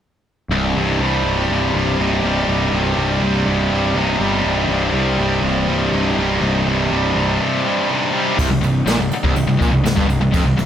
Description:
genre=heavy metal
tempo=122 BPM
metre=4/4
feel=straight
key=C minor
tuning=A4 = 441 Hz
part: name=pipe organ, full organ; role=sustained chords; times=0.5-10.7 s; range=C3 to Eb5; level=-30 LUFS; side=right 1 dB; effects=none
part: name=heavy high-gain guitar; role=riff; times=0.5-10.7 s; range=C2 to G3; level=-19 LUFS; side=left 6 dB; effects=distortion
part: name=tight distorted guitar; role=riff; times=0.5-10.7 s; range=C2 to Eb4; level=-21 LUFS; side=right 10 dB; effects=distortion
part: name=fuzz picked electric bass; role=bass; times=0.5-10.7 s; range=C1 to C2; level=-21 LUFS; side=equal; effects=overdrive
part: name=fuzz guitar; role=riff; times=8.4-10.7 s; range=C2 to Bb2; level=-24 LUFS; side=equal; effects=none
part: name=jazz brush drum kit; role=drums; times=8.4-10.7 s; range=crash cymbal, kick drum, ride cymbal, snare drum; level=-20 LUFS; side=equal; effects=none
room=small room ambience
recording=none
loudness=-15 LUFS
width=side -9 dB against mid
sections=0.5-8.4 A section; 8.4-10.7 B section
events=none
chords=0.5 Cm

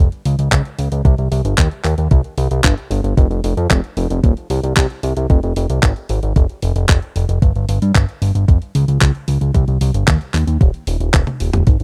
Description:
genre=italo disco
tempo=113 BPM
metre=4/4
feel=straight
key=F minor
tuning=A4 = 442 Hz
part: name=fat analog bass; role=bass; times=0.0-11.8 s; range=Eb1 to G2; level=-19 LUFS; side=equal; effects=none
part: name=clean 12-bit digital drum machine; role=drums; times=0.1-11.8 s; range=handclaps, hi-hat, toms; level=-22 LUFS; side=equal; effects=high-pass filter on hats, high-pass filter on snare, high-pass filter on toms, high-pass filter on room
part: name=electronic kick drum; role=drums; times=0.5-11.8 s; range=none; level=-15 LUFS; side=equal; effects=none
room=little or no reverb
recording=dry, close 1970s-style studio recording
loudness=-16 LUFS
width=mono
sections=0.0-11.7 A section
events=drum fill 11.1-11.7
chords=none

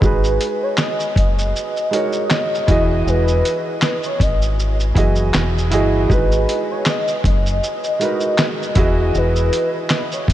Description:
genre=lo-fi hip hop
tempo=79 BPM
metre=4/4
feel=swing 55% on 16ths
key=G# minor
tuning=A4 = 440 Hz
part: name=warm velvety synth lead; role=melody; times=0.0-10.3 s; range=B4 to D#5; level=-22 LUFS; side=left 1 dB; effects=chorus, low-pass filter, analog delay
part: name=felt-muted upright piano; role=accompaniment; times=0.0-10.3 s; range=E3 to D#5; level=-21 LUFS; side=right 3 dB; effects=cassette tape, low-pass filter
part: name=deep dub fingered electric bass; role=bass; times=0.0-10.3 s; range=E1 to G#1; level=-19 LUFS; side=equal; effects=none
part: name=lo-fi sampler-style drum kit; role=drums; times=0.0-10.3 s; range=handclaps, hi-hat, kick drum, shaker, snare drum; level=-20 LUFS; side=equal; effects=none
room=moderate huge ambient reverb, RT60 8.3 s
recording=dreamy mix soaked in reverb, nothing above 10.4 kHz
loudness=-15 LUFS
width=side -13 dB against mid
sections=0.0-10.3 A section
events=none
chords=0.0 G#m7; 2.7 Emaj7; 6.1 G#m7; 8.8 Emaj7

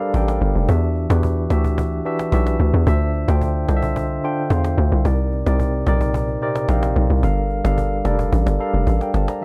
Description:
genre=amapiano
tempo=110 BPM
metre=4/4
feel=straight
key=unclear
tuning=A4 = 440 Hz
part: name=tine electric piano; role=accompaniment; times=0.0-9.4 s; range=Bb2 to Bb5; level=-25 LUFS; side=equal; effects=none
part: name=cajon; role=drums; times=0.0-9.4 s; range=none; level=-32 LUFS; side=equal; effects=none
part: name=hollow log drum bass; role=bass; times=0.1-9.3 s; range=F1 to E2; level=-20 LUFS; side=equal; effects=none
room=small room ambience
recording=none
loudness=-19 LUFS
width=mono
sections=0.0-9.4 A section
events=drop 0.0-9.4; drum fill 8.9-9.4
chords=0.0 Gm9; 0.7 Em9; 2.9 Dm9; 5.0 Cm9; 7.2 Gm9

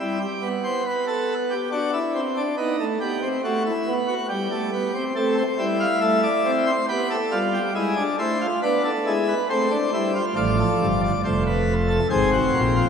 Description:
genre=classical, baroque-style 4-part fugue for pipe organ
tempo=69 BPM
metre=3/4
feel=straight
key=A minor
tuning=A4 = 440 Hz
part: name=pipe organ, plenum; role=solo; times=0.0-12.9 s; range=F1 to F5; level=-20 LUFS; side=equal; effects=none
room=wet church reverb, RT60 3.4 s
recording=minimal, uncompressed stereo recording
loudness=-20 LUFS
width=side -7 dB against mid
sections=0.0-10.4 A section; 10.4-12.9 B section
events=none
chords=0.0 Em/G; 1.7 D; 2.6 B7; 4.3 Gadd9; 5.2 Am; 6.9 G/B; 7.8 E7/G#; 9.5 Am; 10.4 F; 12.1 Ab7

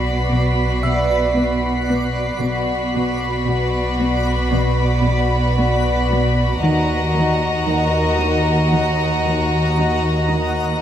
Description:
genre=cinematic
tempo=57 BPM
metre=4/4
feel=straight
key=unclear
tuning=A4 = 440 Hz
part: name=warm studio violin section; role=melody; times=0.0-10.8 s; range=A#5 to B5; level=-25 LUFS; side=left 2 dB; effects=none
part: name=warm studio violin section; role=second line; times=0.0-10.8 s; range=F#4 to D#5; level=-23 LUFS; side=left 1 dB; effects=none
part: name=backwards swelling texture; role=sustained chords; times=0.1-10.8 s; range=A#4 to F#5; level=-26 LUFS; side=right 1 dB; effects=built-in reverb
part: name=warm studio cello section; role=riff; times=0.0-10.6 s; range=B2 to D#4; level=-24 LUFS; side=left 1 dB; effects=none
part: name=dark chamber cello section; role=bass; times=0.0-10.8 s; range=D#2 to B2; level=-23 LUFS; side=right 2 dB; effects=none
part: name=dark studio double bass section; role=bass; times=0.0-10.8 s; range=B1 to D#2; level=-22 LUFS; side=equal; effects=none
part: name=impact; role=sound effects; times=0.0-2.4 s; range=none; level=barely audible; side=none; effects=none
part: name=music box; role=texture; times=0.0-10.8 s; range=E5 to D#7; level=-31 LUFS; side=equal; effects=none
part: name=rich studio violin section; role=texture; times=0.0-6.1 s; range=B6 to C7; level=-33 LUFS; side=right 3 dB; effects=none
room=light reverb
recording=close, detailed microphones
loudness=-16 LUFS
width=side -10 dB against mid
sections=0.0-10.8 A section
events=impact 0.0-2.4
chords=0.0 Bm; 6.6 D#m

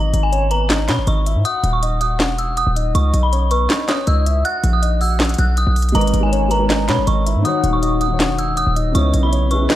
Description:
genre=hip hop, trap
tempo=160 BPM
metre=4/4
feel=half-time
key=G# minor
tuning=A4 = 438 Hz
part: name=dark detuned synth bell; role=melody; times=0.0-9.8 s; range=G#5 to F#6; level=-22 LUFS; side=right 1 dB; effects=chorus, phaser, tape echo
part: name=soft octave-layered synth lead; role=second line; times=0.0-9.8 s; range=B4 to F#5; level=-25 LUFS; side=left 4 dB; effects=chorus, tape echo
part: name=hard-hitting 808-style bass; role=bass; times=0.0-9.7 s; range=D#1 to B2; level=-17 LUFS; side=equal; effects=none
part: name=trap drum kit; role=drums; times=0.1-9.8 s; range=handclaps, hi-hat, snare drum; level=-21 LUFS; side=equal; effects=none
part: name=dark grand piano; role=accompaniment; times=5.9-9.8 s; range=C#3 to E5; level=-21 LUFS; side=left 1 dB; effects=none
room=light reverb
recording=dark, warm production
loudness=-15 LUFS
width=side -13 dB against mid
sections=0.0-9.8 A section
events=none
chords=0.0 G#madd9; 1.4 D#m; 2.9 Badd9; 4.4 B; 5.9 G#madd9; 7.4 D#m7; 8.9 C#m7

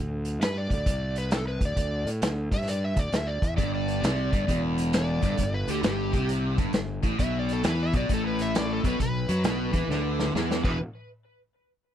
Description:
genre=blues rock power trio and southern rock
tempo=133 BPM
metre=4/4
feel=swing 65% on 8ths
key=unclear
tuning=A4 = 440 Hz
part: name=fuzz fingered electric bass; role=bass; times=0.0-10.8 s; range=E1 to A2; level=-30 LUFS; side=equal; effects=overdrive
part: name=vintage drum kit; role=drums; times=0.2-10.7 s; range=crash cymbal, hi-hat, kick drum, snare drum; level=-28 LUFS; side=equal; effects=none
part: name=overdriven slide guitar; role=melody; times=0.4-10.8 s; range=G4 to E5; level=-33 LUFS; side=equal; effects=none
part: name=overdriven electric guitar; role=riff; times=3.6-10.8 s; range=E2 to F#3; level=-28 LUFS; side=left 1 dB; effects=none
room=little or no reverb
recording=none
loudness=-24 LUFS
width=side -10 dB against mid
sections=0.0-10.8 A section; 10.8-11.9 B section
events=drum fill 9.9-10.8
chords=0.0 D5; 3.6 G5; 7.2 B5; 10.6 E5; 10.8 N.C.

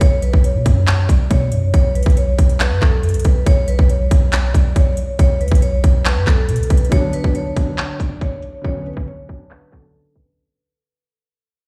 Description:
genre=hip hop, trap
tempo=139 BPM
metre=4/4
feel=half-time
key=B minor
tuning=A4 = 440 Hz
part: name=vibraphone with medium mallets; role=melody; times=0.0-10.4 s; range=A4 to D5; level=-27 LUFS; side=equal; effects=digital delay
part: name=warm 808-style bass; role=bass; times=0.0-6.9 s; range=B1 to B2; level=-18 LUFS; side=equal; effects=none
part: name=trap drum kit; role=drums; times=0.0-10.3 s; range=handclaps, hi-hat, kick drum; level=-18 LUFS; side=equal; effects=overdrive
part: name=felt-muted upright piano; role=accompaniment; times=6.9-10.4 s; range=D3 to D4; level=-28 LUFS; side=equal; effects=none
room=little or no reverb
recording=played on a big sound system in a bare room, stone room reverb, low-pass filter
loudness=-16 LUFS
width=mono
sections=0.0-6.9 A section; 6.9-10.4 B section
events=fade-out 6.9-10.4; filter sweep 6.9-10.4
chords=0.0 B5; 3.5 Bsus2; 6.9 Bm

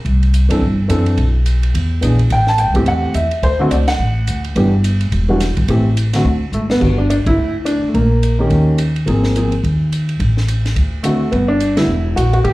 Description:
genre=jazz piano trio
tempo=213 BPM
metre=4/4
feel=swing 60% on 8ths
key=unclear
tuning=A4 = 437 Hz
part: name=upright bass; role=bass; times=0.0-12.5 s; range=E1 to G2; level=-15 LUFS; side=equal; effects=none
part: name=compact cocktail drum kit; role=drums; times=0.1-12.5 s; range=crash cymbal, hi-hat, kick drum, ride cymbal, snare drum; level=-25 LUFS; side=equal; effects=none
part: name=warm upright piano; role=melody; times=0.5-12.5 s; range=D3 to A5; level=-16 LUFS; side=equal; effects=slapback echo
room=light reverb, small room ambience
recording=live gig heard through the venue's PA, club reverb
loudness=-13 LUFS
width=side -19 dB against mid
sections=0.0-6.8 A section; 6.8-12.5 B section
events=band accent 3.9, 7.2, 11.7; drum fill 6.5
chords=0.1 C69; 1.2 N.C.; 1.7 E7; 2.3 Am7; 3.4 D7; 4.6 G6; 5.1 Em; 5.7 Am7; 6.3 G#(b5, no3); 6.8 G5; 7.9 N.C.; 8.5 Eb7; 9.1 Ab69; 10.2 N.C.; 10.8 D7; 11.3 G; 11.9 F#7/E

